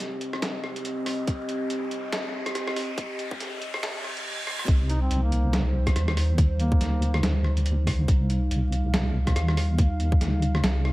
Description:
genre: deep dubstep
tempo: 141 BPM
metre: 4/4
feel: swing 58% on 16ths, half-time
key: C minor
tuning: A4 = 442 Hz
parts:
  - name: dark analog pad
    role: sustained chords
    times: 0.0-10.9 s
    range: G3 to F5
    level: -32 LUFS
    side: equal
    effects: chorus
  - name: trip hop sampler-style drum kit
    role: drums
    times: 0.0-10.9 s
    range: hi-hat, rim click, snare drum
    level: -30 LUFS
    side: equal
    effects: overdrive, high-pass filter on hats, high-pass filter on snare, high-pass filter on room
  - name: riser and reverse cymbal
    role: sound effects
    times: 0.0-4.7 s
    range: none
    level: -36 LUFS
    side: equal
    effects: none
  - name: electronic kick drum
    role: drums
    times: 1.3-10.2 s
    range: none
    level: -22 LUFS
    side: equal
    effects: overdrive
  - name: deep soft wobble bass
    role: bass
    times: 4.7-10.9 s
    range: C2 to Eb2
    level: -23 LUFS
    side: equal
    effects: chorus
  - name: mellow duduk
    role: melody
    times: 4.9-7.2 s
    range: Bb3 to Eb4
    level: -35 LUFS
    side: equal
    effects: dub echo
room: digital ambience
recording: vinyl crackle, high-pass filter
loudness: -23 LUFS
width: side -18 dB against mid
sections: 0.0-4.7 A section; 4.7-10.9 B section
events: build-up 0.0-4.7; riser 0.0-4.7; filter sweep 0.0-4.7; reverse cymbal 3.8-4.7; drum fill 4.5; drop 4.7-10.9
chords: 0.0 Cm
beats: 0.00 0.42 0.85 | 1.28 1.70 2.13 2.55 | 2.98 3.40 3.83 4.25 | 4.68 5.11 5.53 5.96 | 6.38 6.81 7.23 7.66 | 8.08 8.51 8.94 9.36 | 9.79 10.21 10.64

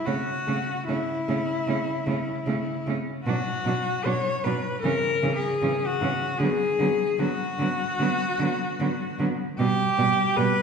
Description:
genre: classical, lyrical piece for cello ensemble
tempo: 76 BPM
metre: 4/4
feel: rubato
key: unclear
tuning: A4 = 436 Hz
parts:
  - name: clear cello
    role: melody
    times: 0.0-10.6 s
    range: E4 to C#5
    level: -26 LUFS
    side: left 2 dB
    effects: none
  - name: rich cello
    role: second line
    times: 0.1-10.5 s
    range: B3 to D4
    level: -32 LUFS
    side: right 6 dB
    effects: none
  - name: rich cello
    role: accompaniment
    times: 0.1-10.5 s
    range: E3 to A3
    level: -31 LUFS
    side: right 2 dB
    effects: none
  - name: clear cello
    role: bass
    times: 0.1-10.5 s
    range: B2 to D3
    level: -29 LUFS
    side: right 1 dB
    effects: none
room: wet scoring stage reverb, RT60 1.5 s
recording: heard from further back in the room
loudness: -23 LUFS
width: side -6 dB against mid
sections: 0.0-10.6 A section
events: none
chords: 0.1 A/C#; 3.3 Bm; 4.8 C#madd11; 6.4 Bm/D; 9.6 G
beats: | 0.07 0.89 1.68 2.47 | 3.27 4.05 4.85 5.63 | 6.42 7.20 8.00 8.81 | 9.59 10.37

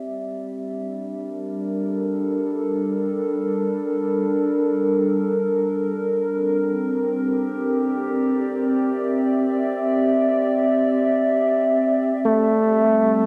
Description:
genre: ambient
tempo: free time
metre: none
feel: none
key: G dorian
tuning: A4 = 440 Hz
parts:
  - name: warbly tape-like pad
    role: sustained chords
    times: 0.0-13.3 s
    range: G3 to E5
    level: -22 LUFS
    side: equal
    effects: chorus, built-in reverb
  - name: mellow trombone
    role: melody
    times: 12.2-13.3 s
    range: A3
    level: -19 LUFS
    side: equal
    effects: dub echo
room: moderate spring reverb, RT60 2.0 s, studio ambience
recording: echo-heavy mix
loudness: -22 LUFS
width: mono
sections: 0.0-13.3 A section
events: fade-in on ambient pad 0.0-13.3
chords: 0.0 Gmadd9; 6.3 C7; 12.6 Gsus2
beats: free time

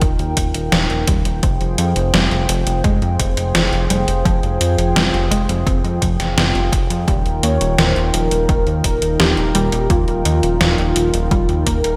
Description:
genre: synthwave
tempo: 85 BPM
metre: 4/4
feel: straight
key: F minor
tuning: A4 = 440 Hz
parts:
  - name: warm analog pad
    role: sustained chords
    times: 0.0-12.0 s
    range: Eb3 to G5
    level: -25 LUFS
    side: equal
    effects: chorus, sidechain pumping
  - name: analog pluck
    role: arpeggios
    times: 0.0-11.9 s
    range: Eb3 to C4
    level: -27 LUFS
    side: equal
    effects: chorus, vintage 12-bit sampler grit, digital delay
  - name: fat analog bass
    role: bass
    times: 0.0-12.0 s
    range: Eb1 to F2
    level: -22 LUFS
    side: equal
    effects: sidechain pumping
  - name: electronic kick drum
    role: drums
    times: 0.0-11.8 s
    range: none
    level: -21 LUFS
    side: equal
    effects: overdrive
  - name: gated 80s digital drum machine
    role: drums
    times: 0.0-12.0 s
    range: hi-hat, snare drum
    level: -22 LUFS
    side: equal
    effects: gated reverb, gated reverb snare, overdrive
  - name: unison lead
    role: melody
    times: 7.4-12.0 s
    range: F4 to Db5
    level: -23 LUFS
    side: equal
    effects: cassette tape, digital delay
room: light reverb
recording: bright 1980s-style digital production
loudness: -17 LUFS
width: mono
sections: 0.0-12.0 A section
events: none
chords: 0.0 Ebadd9; 1.4 Fmadd9; 7.1 Ebadd9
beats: 0.02 0.72 | 1.43 2.14 2.84 3.55 | 4.25 4.96 5.67 6.37 | 7.08 7.78 8.49 9.20 | 9.90 10.61 11.31

